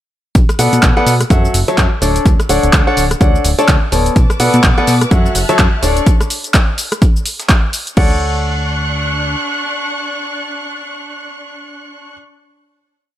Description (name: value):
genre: piano house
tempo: 126 BPM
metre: 4/4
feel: swing 59% on 16ths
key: D major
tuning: A4 = 436 Hz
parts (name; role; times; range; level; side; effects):
- breakbeat sampler-style drum kit; drums; 0.3-7.9 s; hi-hat, snare drum; -29 LUFS; right 2 dB; none
- plucky analog bass; bass; 0.4-9.4 s; D1 to B2; -16 LUFS; equal; sidechain pumping
- electronic kick drum; drums; 0.4-8.1 s; none; -12 LUFS; equal; overdrive
- punchy analog drum machine; drums; 0.4-8.1 s; crash cymbal, handclaps, hi-hat, rim click, shaker; -18 LUFS; equal; overdrive
- clear baby grand piano; riff; 0.6-12.1 s; F#3 to A5; -16 LUFS; left 1 dB; sidechain pumping, dub echo
- warm symphonic violin section; sustained chords; 4.2-12.1 s; D4 to F#6; -22 LUFS; equal; sidechain pumping
room: little or no reverb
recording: none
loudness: -11 LUFS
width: side -12 dB against mid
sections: 0.4-8.0 drop; 8.0-11.8 final chord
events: drop 0.4-8.0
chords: 0.4 Bm7; 1.3 F#m7; 2.0 Dmaj7; 4.2 Bm7; 5.1 F#m7; 5.8 Dmaj7(no3); 8.0 Dmaj7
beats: | 0.35 0.83 1.30 1.78 | 2.25 2.73 3.21 3.68 | 4.16 4.64 5.11 5.59 | 6.07 6.54 7.02 7.49 | 7.97 8.45 8.92 9.40 | 9.88 10.35 10.83 11.30